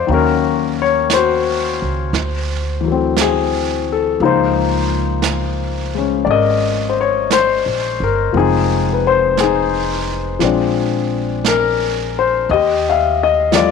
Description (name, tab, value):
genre	jazz ballad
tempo	58 BPM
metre	4/4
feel	swing 68% on 8ths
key	unclear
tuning	A4 = 438 Hz
part	warm grand piano	accompaniment	0.0-13.7 s	Eb3 to F5	-15 LUFS	left 8 dB	none
part	upright bass	bass	0.0-13.7 s	F1 to Eb2	-22 LUFS	right 3 dB	none
part	jazz brush drum kit	drums	0.1-13.7 s	brushed snare drum, hi-hat, snare drum	-24 LUFS	right 10 dB	none
room	light reverb, small room ambience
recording	1960s-style stereo with parts hard left and right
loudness	-14 LUFS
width	side -5 dB against mid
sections	0.0-13.7 A section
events	none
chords	0.1 Ebm7; 2.1 D9; 4.2 Db69; 8.3 Fm7; 10.4 Bb9; 12.5 Ebmaj9#11